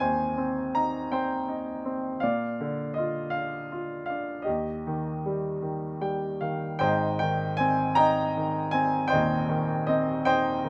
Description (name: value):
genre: classical, lyrical solo piano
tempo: 53 BPM (dotted quarters)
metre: 6/8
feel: rubato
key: unclear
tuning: A4 = 440 Hz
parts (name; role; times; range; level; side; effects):
- clear baby grand piano; solo; 0.0-10.7 s; Eb1 to C6; -28 LUFS; equal; none
room: light reverb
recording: none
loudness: -28 LUFS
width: mono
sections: 0.0-6.8 A section; 6.8-10.7 B section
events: grand piano fill 5.6-6.8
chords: 0.0 Abadd9; 2.2 Bb; 4.5 Eb; 6.8 Abmaj7